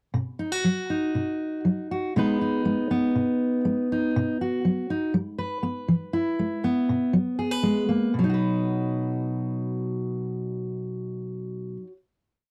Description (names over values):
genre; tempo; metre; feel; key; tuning
indie folk with a building arrangement; 120 BPM; 4/4; straight; B major; A4 = 441 Hz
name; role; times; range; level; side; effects
fingerpicked steel-string acoustic guitar; solo; 0.1-12.0 s; B2 to B4; -26 LUFS; equal; none
room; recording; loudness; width
light reverb; dry, close 1970s-style studio recording; -26 LUFS; mono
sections
0.1-8.1 verse; 8.1-12.2 final chord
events
none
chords
0.1 B; 2.1 G#m/B; 4.2 B; 5.2 G; 5.9 E; 7.1 F#sus4; 8.1 B